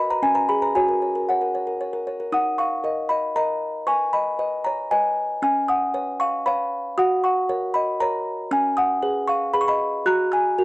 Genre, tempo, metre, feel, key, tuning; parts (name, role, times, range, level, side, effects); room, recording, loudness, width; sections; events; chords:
classical, lullaby for music box; 116 BPM; 3/4; straight; F# major; A4 = 440 Hz
music box; solo; 0.0-10.6 s; C#4 to F#6; -20 LUFS; equal
light reverb; -20 LUFS; side -20 dB against mid
0.0-2.3 A section; 2.3-10.6 B section
0.2 C#5; 0.8 F#; 2.3 D#m; 3.9 G#m/B; 5.4 C#7; 7.0 F#; 8.5 C#7; 10.1 F#